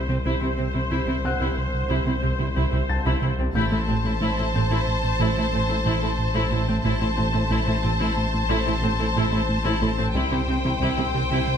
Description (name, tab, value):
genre	cinematic, hybrid orchestral and electronic film score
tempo	91 BPM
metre	5/4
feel	straight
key	A dorian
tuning	A4 = 441 Hz
part	clear studio viola section	accompaniment	0.0-11.5 s	C4 to C5	-29 LUFS	equal	none
part	fat analog bass	riff	0.0-11.6 s	C2 to A3	-27 LUFS	right 2 dB	none
part	saturated sub bass	bass	0.0-11.6 s	A1 to C2	-28 LUFS	left 1 dB	none
part	felt-muted upright piano	texture	0.0-10.2 s	F#5 to A6	-34 LUFS	left 5 dB	digital delay
part	warm symphonic cello section	bass	0.1-11.4 s	A2 to C3	-29 LUFS	right 2 dB	none
part	clear symphonic violin section	second line	3.5-11.6 s	C5	-28 LUFS	left 3 dB	none
part	rich symphonic double bass section	bass	3.5-11.2 s	A1 to C2	-30 LUFS	right 3 dB	none
part	rich symphonic violin section	melody	3.6-11.6 s	G5 to A5	-30 LUFS	left 1 dB	none
room	moderate recital hall reverb, RT60 1.4 s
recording	none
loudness	-21 LUFS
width	side -8 dB against mid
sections	0.0-3.5 A section; 3.5-11.6 A section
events	none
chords	0.0 C; 3.5 Am; 10.1 C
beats	| 0.25 0.91 1.57 2.23 2.89 | 3.55 4.21 4.87 5.53 6.19 | 6.85 7.51 8.16 8.82 9.48 | 10.14 10.80 11.46